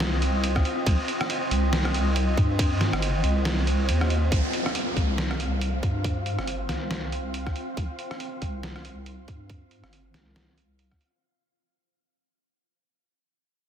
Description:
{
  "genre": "deep dubstep",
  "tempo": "139 BPM",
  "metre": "4/4",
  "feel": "swing 58% on 16ths, half-time",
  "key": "C minor",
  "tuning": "A4 = 441 Hz",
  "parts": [
    { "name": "deep dark ambient pad", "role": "sustained chords", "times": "0.0-11.3 s", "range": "C4 to Eb5", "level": "-33 LUFS", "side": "right 1 dB", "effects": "chorus, built-in reverb" },
    { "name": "deep soft wobble bass", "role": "bass", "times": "0.0-11.0 s", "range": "G1 to G2", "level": "-26 LUFS", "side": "equal", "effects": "chorus" },
    { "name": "trip hop sampler-style drum kit", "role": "drums", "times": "0.0-11.1 s", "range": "hi-hat, ride cymbal, rim click, snare drum", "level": "-30 LUFS", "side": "right 1 dB", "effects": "none" },
    { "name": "wind-like tuned noise texture", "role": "texture", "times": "0.0-11.2 s", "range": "C4 to F5", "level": "-34 LUFS", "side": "left 1 dB", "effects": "built-in reverb" },
    { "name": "electronic kick drum", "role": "drums", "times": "0.6-11.0 s", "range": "none", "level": "-26 LUFS", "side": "equal", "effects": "none" },
    { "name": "downlifter", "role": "sound effects", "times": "4.3-7.8 s", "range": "none", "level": "-34 LUFS", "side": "left 1 dB", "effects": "none" }
  ],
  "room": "digital ambience",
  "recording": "dense, heavily limited modern master",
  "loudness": "-23 LUFS",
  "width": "side -9 dB against mid",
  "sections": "0.0-4.3 A section; 4.3-11.2 B section",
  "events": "drop 0.0-4.3; kick drops out 3.9-4.3; fade-out 4.3-11.2",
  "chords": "0.0 Cm; 4.3 C5"
}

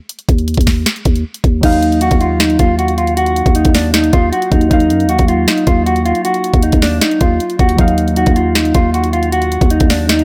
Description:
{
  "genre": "hip hop, trap",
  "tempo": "156 BPM",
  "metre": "4/4",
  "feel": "half-time",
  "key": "Eb minor",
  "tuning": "A4 = 440 Hz",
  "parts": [
    { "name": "trap drum kit", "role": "drums", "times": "0.1-10.2 s", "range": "crash cymbal, hi-hat, kick drum, snare drum", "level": "-17 LUFS", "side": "equal", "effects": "none" },
    { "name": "growling 808-style bass", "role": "bass", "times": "0.3-10.2 s", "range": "Eb2 to Gb2", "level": "-18 LUFS", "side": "equal", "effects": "none" },
    { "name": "mellow electric guitar", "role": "melody", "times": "1.6-10.2 s", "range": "D4 to Gb4", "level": "-17 LUFS", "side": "equal", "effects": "spring reverb" },
    { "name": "muted felt-like synth keys", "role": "accompaniment", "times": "1.6-10.2 s", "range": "Gb3 to F5", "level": "-22 LUFS", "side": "equal", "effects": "chorus" }
  ],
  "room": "little or no reverb",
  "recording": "none",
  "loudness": "-13 LUFS",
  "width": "mono",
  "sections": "0.0-1.6 A section; 1.6-10.2 B section",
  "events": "break 0.0-1.6",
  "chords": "0.0 N.C.; 1.6 Ebmadd9"
}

